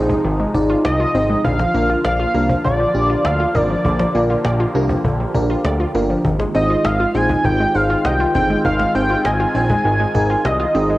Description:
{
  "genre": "synth-pop",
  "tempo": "100 BPM",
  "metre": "4/4",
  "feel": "straight",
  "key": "unclear",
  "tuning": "A4 = 440 Hz",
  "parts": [
    { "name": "FM electric piano with soft pad layer", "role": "accompaniment", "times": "0.0-11.0 s", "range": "D4 to D5", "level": "-23 LUFS", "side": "equal", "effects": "chorus" },
    { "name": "sweeping resonant pad", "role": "sustained chords", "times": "0.0-11.0 s", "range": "C3 to G4", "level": "-24 LUFS", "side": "equal", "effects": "chorus, phaser" },
    { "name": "wide unison pluck", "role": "arpeggios", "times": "0.0-11.0 s", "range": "D3 to Eb5", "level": "-23 LUFS", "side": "left 1 dB", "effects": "analog delay" },
    { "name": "fat analog bass", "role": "bass", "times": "0.0-11.0 s", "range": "G1 to D2", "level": "-21 LUFS", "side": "equal", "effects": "none" },
    { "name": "cajon", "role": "drums", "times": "0.1-10.8 s", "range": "none", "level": "-24 LUFS", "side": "equal", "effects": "cassette tape" },
    { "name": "octave-doubled lead", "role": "melody", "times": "0.8-11.0 s", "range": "D5 to Ab5", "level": "-19 LUFS", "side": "equal", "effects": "chorus, cassette tape" }
  ],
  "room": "moderate spring reverb, RT60 1.7 s",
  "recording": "home recording on cassette",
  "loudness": "-15 LUFS",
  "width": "side -17 dB against mid",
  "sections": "0.0-11.0 A section",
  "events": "none",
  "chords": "0.0 Ab6; 1.4 Bb; 6.2 Ab6"
}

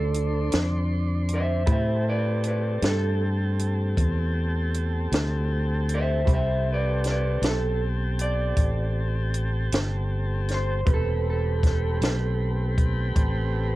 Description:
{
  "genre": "slow blues",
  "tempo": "52 BPM (dotted quarters)",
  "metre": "12/8",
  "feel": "straight",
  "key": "A minor",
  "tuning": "A4 = 439 Hz",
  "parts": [
    { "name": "electric guitar at the edge of break-up", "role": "melody", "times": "0.0-12.8 s", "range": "A4 to E5", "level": "-29 LUFS", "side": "right 1 dB", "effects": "cassette tape" },
    { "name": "warm upright piano", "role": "accompaniment", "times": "0.0-13.8 s", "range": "C4 to B5", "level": "-40 LUFS", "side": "right 6 dB", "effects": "none" },
    { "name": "tonewheel organ", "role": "sustained chords", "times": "0.0-13.8 s", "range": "D3 to C5", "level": "-32 LUFS", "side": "equal", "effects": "slow rotary speaker, cassette tape" },
    { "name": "fingered electric bass", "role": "bass", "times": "0.0-13.8 s", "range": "E1 to A2", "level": "-25 LUFS", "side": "equal", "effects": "none" },
    { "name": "compact cocktail drum kit", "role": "drums", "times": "0.1-13.3 s", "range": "hi-hat, kick drum, snare drum", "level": "-24 LUFS", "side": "equal", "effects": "cassette tape" }
  ],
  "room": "small room ambience",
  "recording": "home recording on cassette",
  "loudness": "-22 LUFS",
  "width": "side -17 dB against mid",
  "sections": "0.0-13.8 A section",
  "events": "none",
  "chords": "0.0 Dm9; 1.7 Am9"
}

